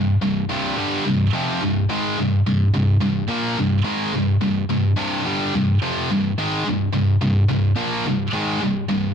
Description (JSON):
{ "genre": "metal", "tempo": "107 BPM", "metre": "4/4", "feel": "straight", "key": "C minor", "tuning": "A4 = 440 Hz", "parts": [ { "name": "heavy high-gain guitar", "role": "solo", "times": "0.0-9.1 s", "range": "C2 to Bb3", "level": "-18 LUFS", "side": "equal", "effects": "distortion" } ], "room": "little or no reverb", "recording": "dark, warm production", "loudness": "-18 LUFS", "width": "side -7 dB against mid", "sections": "0.0-9.1 A section", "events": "none", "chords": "0.0 C5", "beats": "0.50 1.06 1.62 | 2.18 2.74 3.30 3.86 | 4.42 4.98 5.54 6.09 | 6.65 7.21 7.77 8.33 | 8.89" }